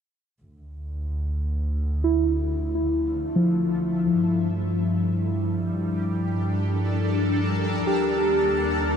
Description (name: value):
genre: ambient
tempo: 64 BPM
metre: 4/4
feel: straight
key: D minor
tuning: A4 = 440 Hz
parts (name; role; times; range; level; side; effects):
- shimmering ambient pad; sustained chords; 1.7-9.0 s; D3 to Bb4; -29 LUFS; left 2 dB; chorus, built-in reverb, phaser
- dark symphonic double bass section; bass; 0.4-9.0 s; D2 to G2; -27 LUFS; equal; tube saturation
- muted felt-like synth keys; arpeggios; 2.0-9.0 s; F3 to G4; -24 LUFS; equal; chorus, ping-pong delay
room: moderate huge ambient reverb, RT60 7.8 s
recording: none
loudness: -22 LUFS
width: side -7 dB against mid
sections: 0.4-9.0 A section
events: fade-in on ambient pad 0.4-9.0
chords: 0.4 Dm; 4.2 Gm7; 7.9 Eb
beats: | 0.42 1.36 2.29 3.23 | 4.17 5.11 6.04 6.98 | 7.92 8.86